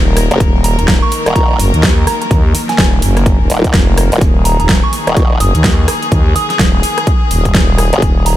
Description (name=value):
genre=bass house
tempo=126 BPM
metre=4/4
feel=swing 61% on 16ths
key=Eb minor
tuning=A4 = 442 Hz
part: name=rich chamber string section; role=sustained chords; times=0.0-8.4 s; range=Eb3 to Bb4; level=-20 LUFS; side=left 3 dB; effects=sidechain pumping
part: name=growling FM bass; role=bass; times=0.0-8.4 s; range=Eb1 to Eb2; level=-13 LUFS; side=equal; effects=overdrive, sidechain pumping
part: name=big-room dance drum kit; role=drums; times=0.2-8.4 s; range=hi-hat, rim click, snare drum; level=-17 LUFS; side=equal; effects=overdrive
part: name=formant-sweep wobble bass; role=bass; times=0.3-8.0 s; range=Eb1 to Gb1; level=-12 LUFS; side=equal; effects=chorus, overdrive, sidechain pumping
part: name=electronic kick drum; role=drums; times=0.4-8.1 s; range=none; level=-12 LUFS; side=equal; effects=overdrive
part: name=soft synth bell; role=melody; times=0.6-8.4 s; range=Ab5 to Eb6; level=-21 LUFS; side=right 3 dB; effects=chorus, analog delay
room=light reverb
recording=none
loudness=-9 LUFS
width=side -13 dB against mid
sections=0.0-8.4 A section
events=none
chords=0.0 Eb5